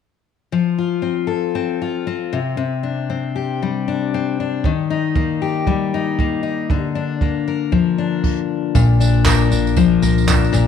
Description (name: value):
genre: acoustic pop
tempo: 117 BPM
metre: 4/4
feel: swing 60% on 16ths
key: F mixolydian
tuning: A4 = 441 Hz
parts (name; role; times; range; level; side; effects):
- picked steel-string acoustic guitar; accompaniment; 0.5-10.7 s; Bb2 to Bb4; -17 LUFS; left 6 dB; none
- jazz brush drum kit; drums; 4.6-10.7 s; crash cymbal, handclaps, kick drum, tambourine; -20 LUFS; right 3 dB; none
- upright bass; bass; 8.8-10.7 s; Bb1 to C2; -19 LUFS; right 3 dB; none
- tambourine; percussion; 8.8-10.7 s; none; -31 LUFS; right 17 dB; none
room: light reverb, studio ambience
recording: 1960s-style stereo with parts hard left and right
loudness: -16 LUFS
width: side -7 dB against mid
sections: 0.5-8.8 A section; 8.8-10.7 B section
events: stop 8.2-8.8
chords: 0.5 F; 2.3 Csus2; 4.6 Eb; 6.7 Bb/D; 8.8 Bb